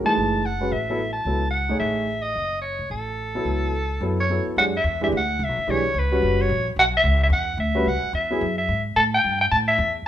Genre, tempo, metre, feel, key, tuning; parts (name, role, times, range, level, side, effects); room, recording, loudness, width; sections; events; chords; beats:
modal jazz; 218 BPM; 4/4; swing 59% on 8ths; F# phrygian from 4.6 s; A4 = 439 Hz
warm concert grand piano; accompaniment; 0.0-8.4 s; Fb3 to Db5; -25 LUFS; equal
upright bass; bass; 0.0-10.0 s; Gb1 to A2; -26 LUFS; equal
growling soprano saxophone; melody; 0.1-10.1 s; A4 to A5; -22 LUFS; equal
moderate large studio reverb, RT60 1.2 s; minimal, uncompressed stereo recording; -20 LUFS; side -11 dB against mid
0.0-4.6 A section; 4.6-10.1 B section
0.2 Gbm9; 4.6 F#9sus4; 9.0 A7(no3)
| 0.15 0.43 0.70 0.98 | 1.26 1.53 1.81 2.08 | 2.36 2.63 2.91 3.18 | 3.46 3.73 4.01 4.28 | 4.56 4.83 5.11 5.38 | 5.66 5.93 6.21 6.48 | 6.76 7.03 7.31 7.58 | 7.86 8.13 8.41 8.68 | 8.96 9.23 9.51 9.78 | 10.05